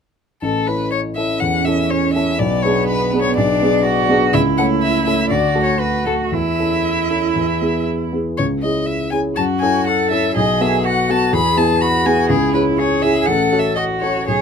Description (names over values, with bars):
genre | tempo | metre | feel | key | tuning
quick classical-period movement for piano trio | 122 BPM | 4/4 | rubato | A major | A4 = 441 Hz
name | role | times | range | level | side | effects
rich violin | melody | 0.4-14.4 s | G#4 to B5 | -20 LUFS | left 5 dB | none
warm baby grand piano | accompaniment | 0.4-14.4 s | A1 to A4 | -18 LUFS | left 1 dB | none
rich cello | second line | 1.4-14.4 s | B3 to A4 | -20 LUFS | right 5 dB | none
room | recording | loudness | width
little or no reverb | close, detailed microphones | -15 LUFS | side -6 dB against mid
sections
0.4-14.4 A section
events
none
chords
0.4 A; 2.4 G#dim/B; 4.3 A/C#; 5.3 D; 6.3 A/E; 7.4 E; 8.4 C#m; 9.4 F#m7; 10.4 B5; 11.3 E; 12.3 C#m; 13.3 F#m/A